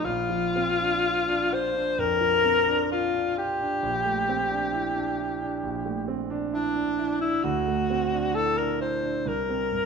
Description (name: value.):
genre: classical, impressionist duo for alto saxophone and grand piano.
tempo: 66 BPM.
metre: 4/4.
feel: rubato.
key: Bb lydian.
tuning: A4 = 441 Hz.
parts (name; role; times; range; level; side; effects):
warm alto saxophone; melody; 0.0-9.9 s; D4 to C5; -24 LUFS; left 2 dB; none.
warm concert grand piano; accompaniment; 0.0-9.9 s; Bb1 to F4; -29 LUFS; right 4 dB; none.
room: moderate recital hall reverb, RT60 1.6 s.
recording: minimal, uncompressed stereo recording.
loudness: -23 LUFS.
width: side -5 dB against mid.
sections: 0.0-9.9 A section.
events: none.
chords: 0.0 Bbadd9; 3.8 C13/Bb; 7.4 D9; 9.3 C7(no3).